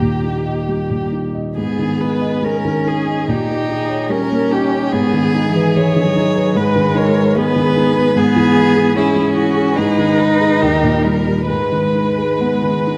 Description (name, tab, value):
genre	classical, slow romantic movement for piano quartet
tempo	73 BPM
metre	4/4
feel	uneven beats, rubato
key	G# minor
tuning	A4 = 439 Hz
part	rich violin	melody	0.0-13.0 s	E4 to C#5	-24 LUFS	equal	none
part	warm cello	second line	0.0-13.0 s	E3 to D#4	-20 LUFS	equal	none
part	rich viola	accompaniment	0.0-13.0 s	G4 to B4	-25 LUFS	equal	none
part	warm grand piano	accompaniment	0.0-13.0 s	D#2 to D#5	-20 LUFS	equal	none
room	wet concert hall reverb, RT60 2.2 s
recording	dark, warm production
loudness	-16 LUFS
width	mono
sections	0.0-13.0 A section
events	none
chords	0.0 D#; 1.6 G#m; 3.3 D#7/A#; 4.9 G#m; 8.2 C#m/G#; 9.8 G#m; 10.6 D#; 11.5 G#m